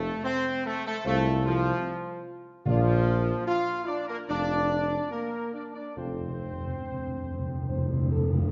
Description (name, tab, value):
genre	classical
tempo	69-75 BPM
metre	4/4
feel	straight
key	Bb major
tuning	A4 = 439 Hz
part	warm trumpet section	melody	0.0-8.5 s	F4 to F5	-40 LUFS	equal	none
part	warm trombone section	sustained chords	0.0-8.5 s	F3 to F4	-33 LUFS	equal	none
part	mellow tuba	bass	0.0-8.4 s	F1 to C2	-32 LUFS	equal	none
part	timpani	percussion	0.0-8.5 s	F2 to Bb2	-32 LUFS	equal	none
part	mellow French horn section	sustained chords	1.1-8.4 s	C4 to D5	-38 LUFS	equal	none
room	wet scoring stage reverb, RT60 1.6 s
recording	dark, warm production, nothing above 7.6 kHz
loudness	-28 LUFS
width	mono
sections	0.0-8.5 A section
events	timpani fill 6.0-8.5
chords	0.0 F; 2.7 Bb; 6.0 F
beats	0.25 1.05 1.86 | 2.66 3.47 4.28 5.12 | 5.97 6.83 7.69